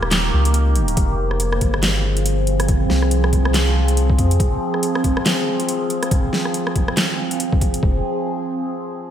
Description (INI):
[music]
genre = deep dubstep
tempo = 140 BPM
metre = 4/4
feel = swing 59% on 16ths, half-time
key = F minor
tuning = A4 = 440 Hz
[part]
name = overtone-sweeping drone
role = sustained chords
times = 0.0-8.0 s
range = Eb3 to Ab4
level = -22 LUFS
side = equal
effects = chorus, built-in reverb, phaser
[part]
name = soft dub sub bass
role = bass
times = 0.0-4.4, 7.8-8.0 s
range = Eb1 to F2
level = -18 LUFS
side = equal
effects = none
[part]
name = dubstep drum kit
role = drums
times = 0.0-7.8 s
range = handclaps, hi-hat, rim click, snare drum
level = -22 LUFS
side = equal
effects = small room reverb
[part]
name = electronic kick drum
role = drums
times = 1.0-7.9 s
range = none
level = -18 LUFS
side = equal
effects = overdrive, small room reverb
[sound]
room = moderate lush hall reverb, RT60 2.2 s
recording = dreamy mix soaked in reverb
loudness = -16 LUFS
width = side -10 dB against mid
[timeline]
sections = 1.0-7.8 A section; 7.8-9.1 B section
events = kick drops out 0.1-1.0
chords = 0.0 Eb; 1.0 Fm